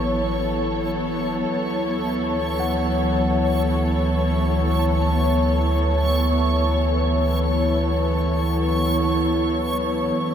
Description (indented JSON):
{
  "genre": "ambient",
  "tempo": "55 BPM",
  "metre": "4/4",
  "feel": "straight",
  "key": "unclear",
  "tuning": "A4 = 439 Hz",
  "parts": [
    { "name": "dark studio string section", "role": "sustained chords", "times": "0.0-10.3 s", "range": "F#3 to C#5", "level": "-24 LUFS", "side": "left 2 dB", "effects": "none" },
    { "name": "tine electric piano", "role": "arpeggios", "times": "0.0-10.2 s", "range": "C#5 to A5", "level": "-34 LUFS", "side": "equal", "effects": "medium stereo tremolo, ping-pong delay" },
    { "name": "warm sub bass", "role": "bass", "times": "0.0-10.3 s", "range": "A1 to F#2", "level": "-24 LUFS", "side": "equal", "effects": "none" },
    { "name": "analog drone", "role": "drone", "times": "0.0-10.3 s", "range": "E3 to B3", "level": "-24 LUFS", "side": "equal", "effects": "chorus" },
    { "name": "backwards swelling texture", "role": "texture", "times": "0.0-10.3 s", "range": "C#6", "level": "-30 LUFS", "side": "right 2 dB", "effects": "built-in reverb" }
  ],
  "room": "wet huge ambient reverb, RT60 7.7 s",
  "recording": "none",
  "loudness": "-19 LUFS",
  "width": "side -9 dB against mid",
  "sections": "0.0-10.3 A section",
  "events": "fade-in on synth texture 0.0-10.3; fade-out on tine electric piano 0.0-10.3",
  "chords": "0.0 A; 1.5 Dadd9"
}